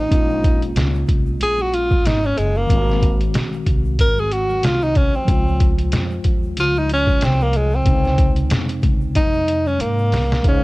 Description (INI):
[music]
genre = hip hop, jazz-hop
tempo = 93 BPM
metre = 4/4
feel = swing 58% on 16ths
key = Db major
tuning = A4 = 442 Hz
[part]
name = breathy tenor saxophone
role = melody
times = 0.0-10.6 s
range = Ab3 to Bb4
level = -20 LUFS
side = equal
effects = cassette tape
[part]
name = mellow tine electric piano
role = accompaniment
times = 0.0-10.6 s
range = C3 to F5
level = -26 LUFS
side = equal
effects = medium stereo tremolo
[part]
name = upright bass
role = bass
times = 0.0-10.6 s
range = Gb1 to Ab2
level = -22 LUFS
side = equal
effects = tube saturation
[part]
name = trip hop sampler-style drum kit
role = drums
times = 0.1-10.6 s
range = hi-hat, kick drum, snare drum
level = -18 LUFS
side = equal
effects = vintage 12-bit sampler grit
[part]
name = tube shaker and congas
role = percussion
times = 0.1-10.6 s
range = none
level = -38 LUFS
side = right 7 dB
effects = none
[part]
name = clear trombone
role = second line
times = 10.5-10.6 s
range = Ab2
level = -26 LUFS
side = right 7 dB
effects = none
[sound]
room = small room ambience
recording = home recording on cassette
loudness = -15 LUFS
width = side -20 dB against mid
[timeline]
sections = 0.0-10.4 A section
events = tenor saxophone solo 0.0-10.4; drum fill 9.8-10.4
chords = 0.1 Bbm7; 2.7 Ab7; 5.3 Dbmaj7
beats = | 0.12 0.76 1.41 2.05 | 2.70 3.34 3.99 4.63 | 5.28 5.92 6.57 7.21 | 7.86 8.51 9.15 9.79 | 10.44